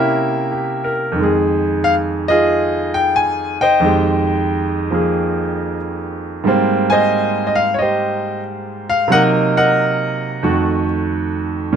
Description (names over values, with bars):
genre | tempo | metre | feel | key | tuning
solo jazz | 91 BPM | 4/4 | swing 67% on 8ths | F minor, Ab major from 6.5 s | A4 = 439 Hz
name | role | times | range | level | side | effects
bright grand piano | solo | 0.0-11.8 s | F2 to Ab5 | -15 LUFS | right 1 dB | none
room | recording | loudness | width
light reverb | none | -14 LUFS | side -8 dB against mid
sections
0.0-6.5 A section; 6.5-11.8 B section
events
none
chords
0.0 C7b9; 1.2 Fm9; 6.5 Abmaj9; 9.1 Cm7b5; 10.4 F7b9